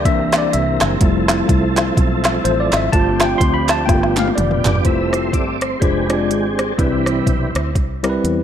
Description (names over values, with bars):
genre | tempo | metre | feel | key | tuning
uptempo gospel | 125 BPM | 4/4 | swing 58% on 8ths | unclear | A4 = 440 Hz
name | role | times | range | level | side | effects
tine electric piano | accompaniment | 0.0-8.4 s | C3 to C6 | -19 LUFS | left 2 dB | medium stereo tremolo
tonewheel organ | sustained chords | 0.0-7.7 s | E3 to E5 | -22 LUFS | right 2 dB | slow rotary speaker, chorus vibrato
fingered electric bass | bass | 0.0-8.4 s | F1 to E2 | -22 LUFS | equal | none
organic electronic drum kit | drums | 0.1-8.4 s | hi-hat, kick drum, rim click, snare drum, toms | -19 LUFS | equal | none
group handclap | percussion | 0.3-4.7 s | none | -27 LUFS | right 4 dB | slapback echo
room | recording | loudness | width
moderate lush hall reverb, RT60 2.0 s, digital ambience | big arena sound | -14 LUFS | side -9 dB against mid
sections
0.0-4.9 A section; 4.9-8.4 B section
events
tine electric piano solo 0.0-4.9; drum fill 3.9-4.9; tonewheel organ solo 4.9-8.4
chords
0.1 C7; 1.0 Fmaj7; 2.9 G7sus4; 3.9 G7; 4.9 Fmaj7; 5.8 Fm6; 6.8 Cmaj7